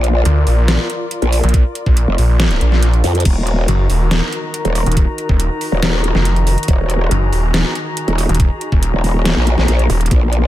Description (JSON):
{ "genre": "heavy wobble dubstep", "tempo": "140 BPM", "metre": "4/4", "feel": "half-time", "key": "Eb harmonic minor", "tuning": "A4 = 441 Hz", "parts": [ { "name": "warm chamber string section", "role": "sustained chords", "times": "0.0-10.5 s", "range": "Eb3 to Bb5", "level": "-24 LUFS", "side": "left 2 dB", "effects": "sidechain pumping, low-pass filter" }, { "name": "growl bass", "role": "bass", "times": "0.0-10.5 s", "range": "Eb1 to F2", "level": "-14 LUFS", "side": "equal", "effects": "chorus, overdrive" }, { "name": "dubstep drum kit", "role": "drums", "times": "0.0-10.4 s", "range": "crash cymbal, hi-hat, snare drum", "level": "-21 LUFS", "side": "equal", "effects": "none" }, { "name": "snarling distorted saw bass", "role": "bass", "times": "0.3-10.1 s", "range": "Eb1 to D2", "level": "-14 LUFS", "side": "equal", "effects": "distortion, overdrive" }, { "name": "electronic kick drum", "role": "drums", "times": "1.5-10.2 s", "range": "none", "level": "-13 LUFS", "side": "equal", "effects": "none" } ], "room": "digital ambience", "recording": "none", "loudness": "-13 LUFS", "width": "side -14 dB against mid", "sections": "0.0-10.5 A section", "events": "none", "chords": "0.0 Bb; 3.3 Ebm", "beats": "0.25 0.68 1.11 | 1.54 1.97 2.40 2.83 | 3.25 3.68 4.11 4.54 | 4.97 5.40 5.83 6.25 | 6.68 7.11 7.54 7.97 | 8.40 8.83 9.25 9.68 | 10.11" }